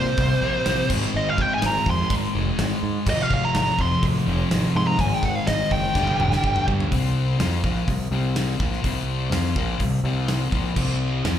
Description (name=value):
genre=hard rock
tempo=125 BPM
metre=4/4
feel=straight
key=C minor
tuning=A4 = 438 Hz
part: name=smooth overdriven lead guitar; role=melody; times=0.0-6.7 s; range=C5 to C6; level=-24 LUFS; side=right 1 dB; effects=slapback echo
part: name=sludgy distorted guitar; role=riff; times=0.0-11.4 s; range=F2 to F4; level=-26 LUFS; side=left 7 dB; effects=overdrive, slapback echo
part: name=sludgy distorted guitar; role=riff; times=0.0-6.9, 10.8-11.4 s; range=F2 to F4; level=-29 LUFS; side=right 12 dB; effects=overdrive, slapback echo
part: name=growling fingered electric bass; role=bass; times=0.0-11.4 s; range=F1 to Ab2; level=-25 LUFS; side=right 1 dB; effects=overdrive
part: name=gated 80s drum kit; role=drums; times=0.2-11.4 s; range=crash cymbal, hi-hat, kick drum, snare drum, toms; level=-27 LUFS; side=equal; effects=none
room=small room ambience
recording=live gig heard through the venue's PA, club reverb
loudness=-20 LUFS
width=side -10 dB against mid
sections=0.0-6.9 A section; 6.9-11.4 B section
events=lead electric guitar solo 0.0-6.9; drum fill 6.0-6.9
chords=0.0 C5; 0.9 Ab5; 3.1 Fm/Ab; 5.0 Ab5; 6.0 G5; 6.9 C5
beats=0.18 0.67 | 1.15 1.63 2.11 2.59 | 3.07 3.55 4.03 4.51 | 4.99 5.47 5.96 6.44 | 6.92 7.40 7.88 8.36 | 8.84 9.32 9.81 10.29 | 10.77 11.25